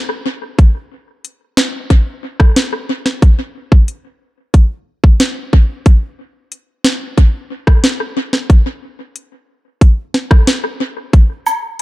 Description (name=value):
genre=dancehall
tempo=91 BPM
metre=4/4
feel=straight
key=none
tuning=none
part: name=island pop drum kit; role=drums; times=0.6-11.8 s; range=hi-hat, kick drum, rim click, snare drum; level=-10 LUFS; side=equal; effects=overdrive, analog delay
part: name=cabasa and woodblock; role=percussion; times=11.5-11.6 s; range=none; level=-16 LUFS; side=equal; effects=analog delay
room=digital ambience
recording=echo-heavy mix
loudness=-11 LUFS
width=side -18 dB against mid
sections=0.0-5.9 A section; 5.9-11.8 B section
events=none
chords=none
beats=| 0.59 1.25 1.91 2.56 | 3.22 3.88 4.54 5.20 | 5.86 6.52 7.18 7.84 | 8.50 9.16 9.82 10.48 | 11.13 11.79